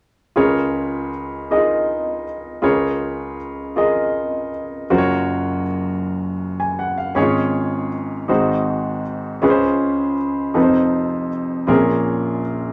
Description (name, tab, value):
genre	gospel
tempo	53 BPM (dotted quarters)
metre	6/8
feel	straight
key	Db major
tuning	A4 = 439 Hz
part	warm baby grand piano	solo	0.4-12.7 s	F1 to Ab5	-20 LUFS	equal	none
room	wet small room ambience, RT60 0.5 s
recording	none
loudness	-20 LUFS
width	mono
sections	0.4-12.7 A section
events	none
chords	0.4 Db6; 4.9 Gbmaj7; 7.2 Db/Ab; 8.3 Ab7; 9.4 Dbmaj7; 10.6 F7; 11.7 Bbm7